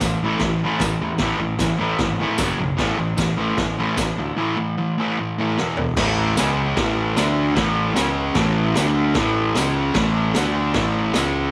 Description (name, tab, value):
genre	garage rock duo or trio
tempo	151 BPM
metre	4/4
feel	straight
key	A major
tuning	A4 = 439 Hz
part	fuzz guitar	riff	0.0-11.5 s	E2 to D4	-22 LUFS	equal	distortion
part	fuzz fingered electric bass	bass	0.0-11.5 s	F#1 to E2	-29 LUFS	equal	overdrive, tube saturation
part	raw garage drum kit	drums	0.0-11.2 s	crash cymbal, kick drum, snare drum, toms	-27 LUFS	equal	none
part	tambourine	percussion	0.0-11.2 s	none	-35 LUFS	equal	none
room	light reverb, small room ambience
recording	none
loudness	-21 LUFS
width	mono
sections	0.0-6.0 A section; 6.0-11.5 B section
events	drum fill 5.6-6.0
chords	0.0 A5; 2.4 F#5; 2.8 A5; 5.6 E5; 6.0 A5; 6.4 C#5; 6.8 A5; 7.2 D5; 7.6 A5; 8.0 C#5; 8.4 A5; 8.8 D5; 9.2 A5; 9.6 C#5; 10.0 A5; 10.4 D5; 10.8 A5